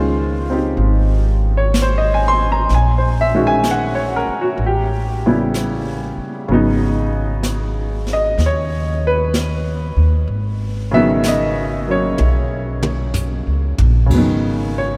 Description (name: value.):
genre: jazz ballad.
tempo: 63 BPM.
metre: 4/4.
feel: swing 68% on 8ths.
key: G# minor.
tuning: A4 = 440 Hz.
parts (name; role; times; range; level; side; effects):
clear upright piano; accompaniment; 0.0-15.0 s; C#3 to B#5; -20 LUFS; equal; none.
upright bass; bass; 0.0-15.0 s; G#1 to D#2; -20 LUFS; equal; none.
jazz brush drum kit; drums; 0.8-15.0 s; brushed snare drum, hi-hat, kick drum, ride cymbal, snare drum, toms; -29 LUFS; equal; none.
room: moderate cathedral reverb, RT60 5.9 s.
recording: in a vast, echoing space.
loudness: -17 LUFS.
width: mono.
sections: 0.0-14.1 A section.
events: drum fill 12.2-14.1.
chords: 0.0 C#maj9; 2.7 F#13/A#; 4.6 A9; 6.5 G#m11.